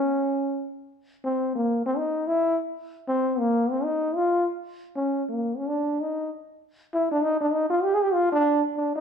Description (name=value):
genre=jazz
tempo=194 BPM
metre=4/4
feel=swing 63% on 8ths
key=Eb major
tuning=A4 = 440 Hz
part: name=breathy trombone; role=solo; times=0.0-9.0 s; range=Bb3 to Ab4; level=-23 LUFS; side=equal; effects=none
room=moderate large studio reverb, RT60 1.1 s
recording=band playing live in one room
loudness=-23 LUFS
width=side -7 dB against mid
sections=0.0-8.5 A section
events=trombone solo 0.0-9.0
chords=none